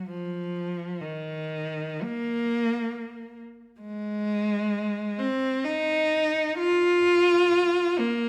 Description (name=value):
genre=classical, free, expressive piece for unaccompanied cello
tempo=free time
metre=none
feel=none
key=F minor from 3.8 s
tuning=A4 = 441 Hz
part: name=rich cello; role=solo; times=0.0-8.3 s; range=Eb3 to F4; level=-26 LUFS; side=equal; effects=none
room=moderate recital hall reverb, RT60 1.7 s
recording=none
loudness=-26 LUFS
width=mono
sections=0.0-8.3 A section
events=none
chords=none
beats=free time